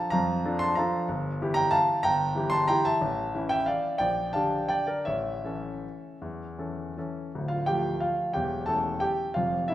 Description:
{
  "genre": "classical, piano waltz",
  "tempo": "153-201 BPM",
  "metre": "3/4",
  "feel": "rubato",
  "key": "unclear",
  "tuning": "A4 = 439 Hz",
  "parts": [
    { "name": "warm baby grand piano", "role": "solo", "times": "0.0-9.7 s", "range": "D1 to C6", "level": "-25 LUFS", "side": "equal", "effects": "none" }
  ],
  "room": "wet recital hall reverb, RT60 1.7 s",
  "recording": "heard from further back in the room",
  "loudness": "-25 LUFS",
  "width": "side -13 dB against mid",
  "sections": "0.0-7.3 A section; 7.3-9.7 B section",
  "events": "none",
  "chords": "0.0 Bbmaj7; 1.1 Edim/G; 3.0 A; 4.0 Gm/Bb; 5.1 A; 7.3 Dm; 8.4 A7/E"
}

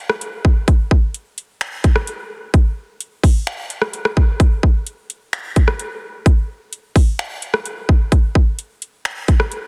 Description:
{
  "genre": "hip hop",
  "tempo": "129 BPM",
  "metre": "4/4",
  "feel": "half-time",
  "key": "none",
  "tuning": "none",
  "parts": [
    { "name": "trap drum kit", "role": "drums", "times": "0.1-9.6 s", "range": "finger snaps, hi-hat, kick drum, rim click", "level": "-17 LUFS", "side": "equal", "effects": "soft clipping on snare, vintage 12-bit sampler grit" }
  ],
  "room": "little or no reverb",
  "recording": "dense, heavily limited modern master",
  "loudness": "-18 LUFS",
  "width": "mono",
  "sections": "0.0-9.7 A section",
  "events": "none",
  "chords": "none"
}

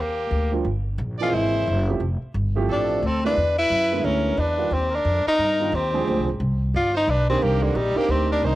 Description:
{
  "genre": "jazz, small-group swing and bop",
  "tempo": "177 BPM",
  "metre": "4/4",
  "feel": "swing 63% on 8ths",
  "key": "C minor",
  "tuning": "A4 = 443 Hz",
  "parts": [
    { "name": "clear tenor saxophone", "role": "melody", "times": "0.0-8.6 s", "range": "D3 to F4", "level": "-22 LUFS", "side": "left 1 dB", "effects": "cassette tape" },
    { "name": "brilliant trumpet", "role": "second line", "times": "0.0-8.6 s", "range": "Bb3 to D5", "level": "-32 LUFS", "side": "right 6 dB", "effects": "none" },
    { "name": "upright bass", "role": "bass", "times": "0.0-8.6 s", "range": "F1 to G2", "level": "-24 LUFS", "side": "equal", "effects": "none" },
    { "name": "warm grand piano", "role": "accompaniment", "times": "0.5-8.6 s", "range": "D3 to Eb5", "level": "-26 LUFS", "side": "right 6 dB", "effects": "none" }
  ],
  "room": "light reverb, studio reverb",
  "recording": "home recording on cassette",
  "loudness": "-20 LUFS",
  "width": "side -16 dB against mid",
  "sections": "0.0-8.6 A section",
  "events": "none",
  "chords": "0.0 Cm9 (rootless); 0.7 Gm; 1.3 C7alt; 2.0 Fmaj9; 3.4 E7#11; 4.7 Ebmaj9; 6.1 Dm7b5; 6.7 G; 7.4 Cm9"
}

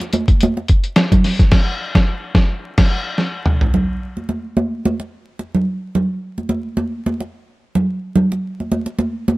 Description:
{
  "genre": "funk",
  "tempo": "108 BPM",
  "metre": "4/4",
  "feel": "swing 56% on 16ths",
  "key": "none",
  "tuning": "none",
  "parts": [
    { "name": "lo-fi sampler-style drum kit", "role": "drums", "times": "0.0-3.7 s", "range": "crash cymbal, hi-hat, kick drum, snare drum, toms", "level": "-14 LUFS", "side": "equal", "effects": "none" },
    { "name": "congas", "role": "percussion", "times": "0.0-9.4 s", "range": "none", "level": "-18 LUFS", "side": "right 1 dB", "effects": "none" }
  ],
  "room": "light reverb",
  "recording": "vinyl crackle",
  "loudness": "-16 LUFS",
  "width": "side -19 dB against mid",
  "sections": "0.0-3.7 A section; 3.7-9.4 B section",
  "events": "band accent 1.5-3.7; drum fill 3.2-3.7",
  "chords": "none"
}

